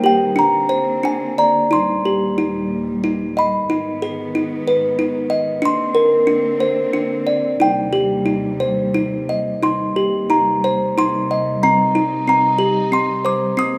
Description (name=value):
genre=children's music, lullaby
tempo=91 BPM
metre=3/4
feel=rubato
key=Eb major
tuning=A4 = 440 Hz
part: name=music box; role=melody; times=0.0-13.8 s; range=C4 to Eb6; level=-18 LUFS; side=equal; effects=none
part: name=dark chamber string section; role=sustained chords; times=0.0-13.8 s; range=Eb2 to Eb4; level=-27 LUFS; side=equal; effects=none
room=wet recital hall reverb, RT60 1.7 s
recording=none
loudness=-18 LUFS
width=mono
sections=0.0-9.6 A section; 9.6-13.8 A section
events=none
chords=0.4 Bbadd9; 1.7 Eb; 3.7 Abm; 5.6 Bbadd9; 7.6 Eb6; 11.6 Cm